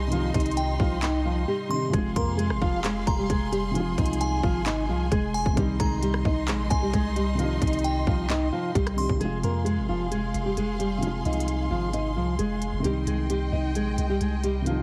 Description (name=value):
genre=hip hop, trap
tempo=132 BPM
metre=4/4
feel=half-time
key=F minor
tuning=A4 = 442 Hz
part: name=nylon-string guitar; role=melody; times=0.0-14.8 s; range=F3 to Eb5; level=-31 LUFS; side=equal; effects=low-pass filter, delay
part: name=delicate synth tine bell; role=second line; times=0.0-9.2 s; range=G5 to C6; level=-37 LUFS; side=equal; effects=chorus, delay
part: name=dark baby grand piano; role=accompaniment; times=0.0-14.8 s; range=C3 to F4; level=-34 LUFS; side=equal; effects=low-pass filter
part: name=warm symphonic string section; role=sustained chords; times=0.0-14.8 s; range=Eb4 to C6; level=-38 LUFS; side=equal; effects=none
part: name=long sustained 808-style bass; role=bass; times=0.0-14.8 s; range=F1 to F2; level=-31 LUFS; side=equal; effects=none
part: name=trap drum kit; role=drums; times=0.1-14.8 s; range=handclaps, hi-hat, kick drum, rim click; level=-30 LUFS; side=equal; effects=none
room=light reverb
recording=heavily compressed radio sound, multiband compression, vinyl crackle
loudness=-26 LUFS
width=mono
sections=0.0-9.2 A section; 9.2-14.8 B section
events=drums muted 1.5-1.9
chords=0.0 Cm; 1.9 Fm; 5.6 Cm; 9.2 Fm; 12.8 Cm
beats=| 0.12 0.57 1.02 1.48 | 1.93 2.39 2.84 3.30 | 3.75 4.21 4.66 5.12 | 5.57 6.03 6.48 6.93 | 7.39 7.84 8.30 8.75 | 9.21 9.66 10.12 10.57 | 11.03 11.48 11.93 12.39 | 12.84 13.30 13.75 14.21 | 14.66